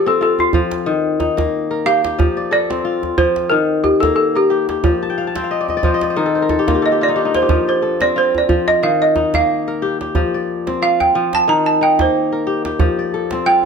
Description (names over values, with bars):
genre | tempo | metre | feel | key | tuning
west african traditional, West African string and xylophone music | 90 BPM | 4/4 | swing 56% on 16ths | F mixolydian | A4 = 440 Hz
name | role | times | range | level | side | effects
balafon | melody | 0.0-13.6 s | F4 to Bb5 | -16 LUFS | right 2 dB | none
kora | arpeggios | 0.0-13.7 s | Eb3 to A5 | -18 LUFS | left 4 dB | none
djembe | percussion | 0.4-13.4 s | none | -20 LUFS | right 3 dB | none
room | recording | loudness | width
moderate recital hall reverb, RT60 1.5 s | close, detailed microphones | -14 LUFS | side -6 dB against mid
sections
0.0-13.7 A section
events
balafon solo 0.0-13.7; kora fill 5.0-7.5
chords
0.0 F; 0.9 Eb; 2.2 F; 3.5 Eb; 4.8 F5; 6.2 Eb; 7.5 F; 8.8 Eb; 10.1 F5; 11.5 Eb; 12.8 F